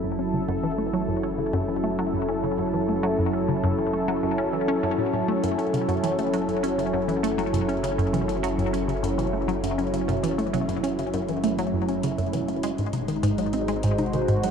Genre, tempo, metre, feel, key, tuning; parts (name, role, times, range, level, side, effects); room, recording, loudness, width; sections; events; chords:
ambient, sequencer-driven space music; 100 BPM; 4/4; straight; F# dorian; A4 = 439 Hz
sweeping resonant pad; sustained chords; 0.0-14.5 s; F#3 to B#4; -25 LUFS; equal; chorus
hollow square pluck; riff; 0.0-14.5 s; F#2 to D#4; -27 LUFS; equal; chorus, phaser, ping-pong delay
analog drone; bass; 0.0-14.5 s; F#1 to G#1; -36 LUFS; equal; chorus, phaser
soft vintage rhythm box; percussion; 5.4-14.5 s; hi-hat, toms; -36 LUFS; left 3 dB; ping-pong delay
wet huge ambient reverb, RT60 7.1 s; dreamy mix soaked in reverb; -22 LUFS; side -7 dB against mid
0.0-14.5 A section
fade-in on synth drone 0.0-14.5
0.0 F#m7; 12.6 G#7